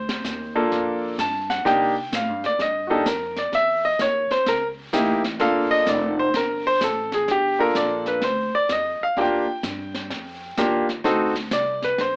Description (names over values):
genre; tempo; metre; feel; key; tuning
jazz piano trio; 128 BPM; 4/4; swing 66% on 8ths; G minor; A4 = 440 Hz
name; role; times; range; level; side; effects
bright upright piano; melody; 0.0-12.2 s; Bb3 to A5; -20 LUFS; equal; none
upright bass; bass; 0.0-12.2 s; F1 to C3; -32 LUFS; equal; none
jazz brush drum kit; drums; 0.1-12.2 s; brushed snare drum, hi-hat, kick drum, snare drum; -30 LUFS; equal; none
room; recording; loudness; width
light reverb; worn, warbling old tape, cassette tape, warbly pitch drift, AM radio sound; -19 LUFS; side -34 dB against mid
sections
0.0-12.2 A section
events
upright piano solo 0.0-12.2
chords
0.0 Gm7; 1.6 Cm7; 3.5 C#m6; 5.4 Gm7; 9.2 Ebmaj7; 11.0 D7b9